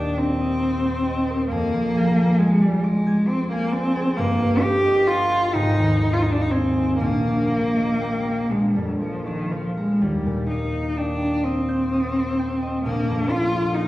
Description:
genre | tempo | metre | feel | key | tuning
classical, romantic duo for cello and harp | 39-46 BPM (dotted quarters) | 6/8 | rubato | Eb major | A4 = 440 Hz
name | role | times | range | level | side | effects
rich cello | melody | 0.0-13.9 s | Eb3 to G4 | -21 LUFS | equal | none
concert harp | accompaniment | 0.0-13.9 s | G1 to Ab6 | -24 LUFS | equal | none
room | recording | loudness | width
wet recital hall reverb, RT60 1.4 s | heard from further back in the room, lossy compression artefacts | -19 LUFS | side -16 dB against mid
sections
0.0-13.9 A section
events
none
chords
0.0 Eb; 1.5 Ddim/F; 4.2 Eb/G; 5.5 Ab; 7.0 Eb/Bb; 8.5 Bb; 10.0 Eb; 12.8 Bb

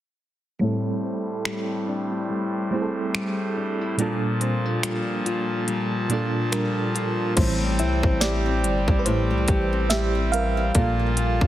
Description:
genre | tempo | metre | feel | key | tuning
contemporary R&B | 71 BPM | 4/4 | swing 58% on 16ths | unclear | A4 = 440 Hz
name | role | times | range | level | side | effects
FM electric piano with tremolo | accompaniment | 0.6-11.5 s | Bb2 to F5 | -26 LUFS | right 3 dB | low-pass filter
pipe organ, trumpet | sustained chords | 0.6-11.5 s | A2 to A5 | -30 LUFS | right 1 dB | low-pass filter
nylon-string guitar | arpeggios | 0.6-11.5 s | A2 to F4 | -28 LUFS | left 4 dB | low-pass filter, digital delay
trap drum kit | drums | 1.5-11.5 s | crash cymbal, finger snaps, hi-hat, kick drum, snare drum | -25 LUFS | equal | none
long sustained 808-style bass | bass | 7.4-11.5 s | G1 to C2 | -25 LUFS | equal | none
glassy synth bell | texture | 7.8-10.4 s | G4 to E5 | -35 LUFS | left 2 dB | chorus, tremolo, digital delay
room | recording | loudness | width
light reverb, digital ambience | heavily compressed radio sound | -21 LUFS | side -13 dB against mid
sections
0.6-7.4 A section; 7.4-11.5 B section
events
filter sweep 0.6-7.4; kick muted 4.0-7.4; FM electric piano solo 7.4-11.5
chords
0.6 Am7; 4.0 Gm7/Bb; 7.4 Am7; 10.7 Gm7/Bb

